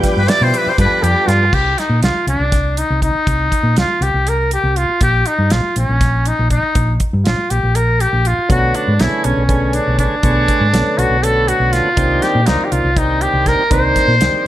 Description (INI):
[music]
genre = electric jazz fusion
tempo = 241 BPM (eighths)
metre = 7/8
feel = straight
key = unclear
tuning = A4 = 440 Hz
[part]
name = tonewheel organ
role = accompaniment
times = 0.0-1.5, 8.5-14.5 s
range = D3 to C#5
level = -20 LUFS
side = right 1 dB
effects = slow rotary speaker
[part]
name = lush unison pad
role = sustained chords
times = 0.0-1.5 s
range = B4 to D6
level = -29 LUFS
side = equal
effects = chorus
[part]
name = hollow-body short-scale fingered electric bass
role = bass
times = 0.0-14.4 s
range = Bb1 to B2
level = -17 LUFS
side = equal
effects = none
[part]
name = damped 70s drum kit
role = drums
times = 0.0-14.3 s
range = crash cymbal, hi-hat, kick drum, snare drum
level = -19 LUFS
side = equal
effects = none
[part]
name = trumpet with metal mute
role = melody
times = 0.2-14.5 s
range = Db4 to D5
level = -16 LUFS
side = equal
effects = slapback echo
[sound]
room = light reverb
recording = none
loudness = -12 LUFS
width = side -13 dB against mid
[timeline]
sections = 0.0-1.5 A section; 1.5-14.5 B section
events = muted trumpet solo 0.0-1.5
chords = 0.0 G7; 1.5 Cm; 5.0 Bb5; 8.5 Bm9; 12.0 Cm9